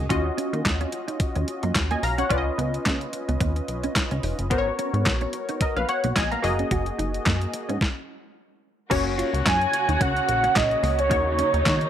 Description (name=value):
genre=early-eighties boogie funk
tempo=109 BPM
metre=4/4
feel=swing 56% on 16ths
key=F# major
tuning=A4 = 439 Hz
part: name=funky polysynth comp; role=accompaniment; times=0.0-11.9 s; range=A#3 to A#5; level=-27 LUFS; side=left 2 dB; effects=chorus
part: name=plucky analog bass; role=bass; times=0.0-11.9 s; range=E#1 to D#3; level=-27 LUFS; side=equal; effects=none
part: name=detuned 8-bit digital drum machine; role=drums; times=0.1-11.9 s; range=crash cymbal, handclaps, hi-hat, kick drum, snare drum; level=-25 LUFS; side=equal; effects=overdrive
part: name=mellow electric guitar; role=riff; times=0.3-11.8 s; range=A#3 to F#4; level=-33 LUFS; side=right 4 dB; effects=ensemble chorus
part: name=dark studio string section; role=sustained chords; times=8.9-11.9 s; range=C#3 to F#4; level=-30 LUFS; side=left 3 dB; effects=none
part: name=warm velvety synth lead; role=melody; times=9.5-11.9 s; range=C#5 to G#5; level=-22 LUFS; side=right 3 dB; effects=chorus
room=light reverb, digital ambience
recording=none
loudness=-21 LUFS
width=side -10 dB against mid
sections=0.0-8.9 A section; 8.9-11.9 B section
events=stop 7.8-8.9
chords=0.1 D#m9; 2.3 C#9; 4.5 G#m11; 6.4 F#69; 7.8 N.C.; 8.9 F#; 11.1 D#m7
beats=| 0.10 0.65 1.20 1.75 | 2.30 2.85 3.40 3.96 | 4.50 5.06 5.61 6.16 | 6.71 7.26 7.81 8.36 | 8.91 9.46 10.01 10.56 | 11.11 11.66